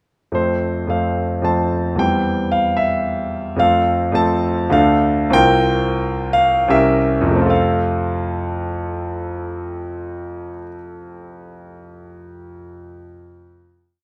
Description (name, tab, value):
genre	classical, romantic character piece for solo piano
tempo	72-115 BPM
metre	3/4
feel	rubato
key	F major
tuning	A4 = 441 Hz
part	clear concert grand piano	solo	0.3-14.0 s	C2 to A5	-19 LUFS	equal	none
room	moderate large studio reverb, RT60 0.8 s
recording	none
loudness	-18 LUFS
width	mono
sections	0.4-7.5 A section; 7.5-12.1 final chord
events	slowing down 2.8-7.5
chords	0.4 F; 2.0 C/E; 3.6 F; 4.7 Dm; 5.3 C7sus4; 6.7 C7b9; 7.5 F